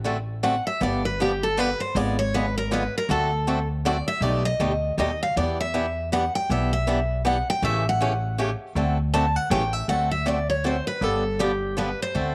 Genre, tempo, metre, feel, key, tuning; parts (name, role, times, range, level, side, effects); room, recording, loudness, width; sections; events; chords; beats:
acoustic string swing (jazz manouche); 159 BPM; 3/4; swing 61% on 8ths; D mixolydian; A4 = 440 Hz
picked swing-style acoustic guitar; accompaniment; 0.0-12.3 s; B2 to A4; -30 LUFS; equal
upright bass; bass; 0.0-12.3 s; G1 to E2; -30 LUFS; equal
picked steel-string acoustic guitar; melody; 0.4-12.3 s; G4 to A5; -28 LUFS; equal
moderate spring reverb, RT60 1.7 s, small room ambience; -24 LUFS; mono
0.0-9.9 A section; 9.9-12.3 A section
steel-string acoustic guitar solo 0.0-12.3
0.0 D7; 0.8 G7; 2.0 G#dim7; 3.1 D7; 4.2 B7alt; 5.4 Em7; 7.6 A7; 8.8 D7; 9.5 A7; 9.9 D7; 11.0 G7
0.05 0.43 | 0.81 1.19 1.57 | 1.95 2.33 2.71 | 3.09 3.47 3.85 | 4.23 4.61 4.98 | 5.36 5.74 6.12 | 6.50 6.87 7.25 | 7.63 8.00 8.38 | 8.76 9.13 9.51 | 9.89 10.27 10.64 | 11.02 11.40 11.78 | 12.15